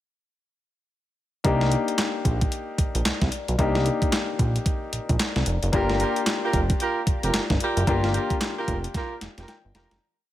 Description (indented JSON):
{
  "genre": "R&B, new jack swing",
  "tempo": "112 BPM",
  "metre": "4/4",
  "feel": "swing 62% on 16ths",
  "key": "C minor",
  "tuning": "A4 = 440 Hz",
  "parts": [
    { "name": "clear grand piano", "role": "accompaniment", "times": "1.4-10.0 s", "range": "Bb3 to Bb5", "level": "-27 LUFS", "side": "left 4 dB", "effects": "none" },
    { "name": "fat analog bass", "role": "bass", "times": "1.4-10.0 s", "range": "F1 to C2", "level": "-25 LUFS", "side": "equal", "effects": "none" },
    { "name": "clean 12-bit digital drum machine", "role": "drums", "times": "1.4-10.0 s", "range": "handclaps, hi-hat, kick drum, snare drum", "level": "-25 LUFS", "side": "equal", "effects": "overdrive" },
    { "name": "warm horn section", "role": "stabs", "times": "5.7-10.0 s", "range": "F4 to Bb4", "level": "-28 LUFS", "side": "right 3 dB", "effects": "none" }
  ],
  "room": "little or no reverb",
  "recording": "none",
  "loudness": "-22 LUFS",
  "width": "side -13 dB against mid",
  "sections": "1.4-10.0 verse",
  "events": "fade-out 7.9-10.0; drum fill 8.9-10.0; grand piano fill 9.2-10.0",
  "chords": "1.4 Cm7; 5.7 Gm7"
}